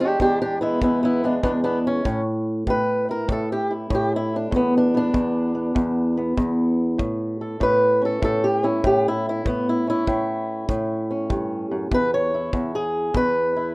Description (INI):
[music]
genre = acoustic country blues, solo or duo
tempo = 97 BPM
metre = 4/4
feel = swing 67% on 8ths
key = unclear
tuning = A4 = 440 Hz
[part]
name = fingerpicked swing-style acoustic guitar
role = melody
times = 0.0-13.7 s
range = E2 to C#5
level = -20 LUFS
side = equal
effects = none
[part]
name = kick drum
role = drums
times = 0.2-13.3 s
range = none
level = -27 LUFS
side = equal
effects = none
[sound]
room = light reverb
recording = rough home demo mix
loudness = -19 LUFS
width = side -25 dB against mid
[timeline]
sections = 0.0-13.7 A section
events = steel-string acoustic guitar solo 0.0-13.7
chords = 0.0 E7; 2.1 A5; 4.5 E5; 7.0 A; 11.9 N.C.